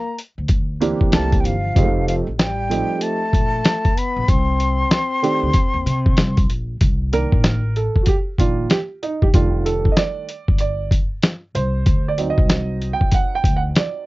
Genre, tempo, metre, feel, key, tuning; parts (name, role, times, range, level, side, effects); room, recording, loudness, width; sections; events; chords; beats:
hip hop, jazz-hop; 95 BPM; 4/4; swing 62% on 16ths; C dorian; A4 = 440 Hz
breathy concert flute; melody; 0.0-6.5 s; F5 to C6; -23 LUFS; left 1 dB
breathy trombone; second line; 0.0-6.5 s; F3 to C4; -27 LUFS; left 5 dB
dusty soul sampler-style drum kit; drums; 0.2-13.9 s; hi-hat, kick drum, snare drum; -17 LUFS; equal; vintage 12-bit sampler grit
upright bass; bass; 0.4-13.7 s; F1 to C3; -22 LUFS; equal
dark grand piano; accompaniment; 0.8-14.1 s; Eb3 to G5; -22 LUFS; right 4 dB
little or no reverb; cassette tape, nothing above 7.6 kHz; -16 LUFS; side -20 dB against mid
0.0-6.8 A section; 6.8-14.1 B section
grand piano solo 6.8-14.1
0.0 C7sus2; 1.1 C9; 1.8 F7; 4.3 Cmadd9; 6.8 Cm9; 9.3 F13; 11.9 D7b9
0.50 1.13 | 1.76 2.39 3.02 3.65 | 4.29 4.92 5.55 6.18 | 6.81 7.45 8.08 8.71 | 9.34 9.97 10.60 11.23 | 11.87 12.50 13.13 13.76